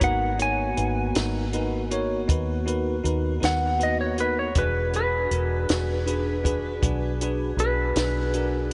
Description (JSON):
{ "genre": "slow blues", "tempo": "53 BPM (dotted quarters)", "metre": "12/8", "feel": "straight", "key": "G# minor", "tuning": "A4 = 440 Hz", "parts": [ { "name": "clean lap steel guitar", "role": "melody", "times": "0.0-8.7 s", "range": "B4 to G#5", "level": "-29 LUFS", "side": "equal", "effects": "none" }, { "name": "bell-like tine electric piano", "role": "accompaniment", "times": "0.0-8.6 s", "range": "D4 to C#5", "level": "-33 LUFS", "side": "equal", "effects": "lush chorus" }, { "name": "mellow tonewheel organ", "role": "sustained chords", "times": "0.0-8.7 s", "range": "A#3 to G#4", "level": "-34 LUFS", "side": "equal", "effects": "slow rotary speaker" }, { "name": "vintage muted fingered electric bass", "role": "bass", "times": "0.0-8.7 s", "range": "E1 to D#2", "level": "-30 LUFS", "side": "equal", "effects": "none" }, { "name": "compact cocktail drum kit", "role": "drums", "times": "0.0-8.7 s", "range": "hi-hat, kick drum, snare drum", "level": "-30 LUFS", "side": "equal", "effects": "none" } ], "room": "moderate huge ambient reverb, RT60 4.3 s", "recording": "dreamy mix soaked in reverb, nothing above 10.7 kHz", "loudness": "-25 LUFS", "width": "mono", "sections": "0.0-8.7 A section", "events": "none", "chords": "0.0 G#m7; 4.6 E7" }